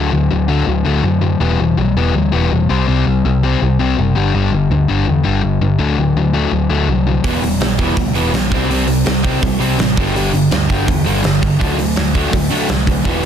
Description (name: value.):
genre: punk rock.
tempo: 165 BPM.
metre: 4/4.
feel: straight.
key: unclear.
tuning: A4 = 437 Hz.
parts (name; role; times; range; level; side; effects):
sludgy distorted guitar; riff; 0.0-13.3 s; G2 to C4; -16 LUFS; left 6 dB; overdrive.
picked electric bass; bass; 0.0-13.3 s; E1 to F#2; -18 LUFS; right 2 dB; none.
distorted electric guitar; riff; 7.2-13.3 s; E2 to D4; -19 LUFS; right 13 dB; distortion.
big rock drum kit; drums; 7.2-13.3 s; hi-hat, kick drum, snare drum; -18 LUFS; right 2 dB; none.
room: small room reverb.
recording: dense, heavily limited modern master.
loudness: -13 LUFS.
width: side -9 dB against mid.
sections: 0.0-13.3 A section.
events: none.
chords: 0.0 D; 1.4 Em; 2.7 C5; 4.1 G5; 5.8 D; 7.2 Em; 8.5 C5; 10.0 G5; 11.6 D.